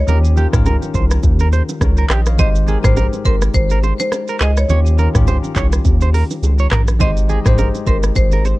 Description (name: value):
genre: afrobeats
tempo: 104 BPM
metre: 4/4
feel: swing 58% on 16ths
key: Ab major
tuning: A4 = 439 Hz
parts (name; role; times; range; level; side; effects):
- marimba with hard mallets; melody; 0.0-8.6 s; Bb4 to Eb5; -23 LUFS; left 1 dB; ping-pong delay
- bell-like tine electric piano; accompaniment; 0.0-8.6 s; Eb3 to F5; -24 LUFS; left 5 dB; none
- round analog bass; bass; 0.0-8.5 s; Ab1 to Eb2; -15 LUFS; equal; none
- semi-hollow electric guitar; riff; 0.1-8.5 s; G4 to Db5; -25 LUFS; right 6 dB; ping-pong delay
- afro-pop drum kit; drums; 0.1-8.6 s; handclaps, hi-hat, kick drum, rim click, shaker, toms; -16 LUFS; equal; none
- congas and bongos; percussion; 0.1-8.6 s; none; -27 LUFS; right 5 dB; none
room: little or no reverb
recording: dark, warm production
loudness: -12 LUFS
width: side -19 dB against mid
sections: 0.0-8.6 A section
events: none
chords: 0.1 Eb9; 2.4 Abmaj7; 4.7 Eb9; 7.0 Abmaj7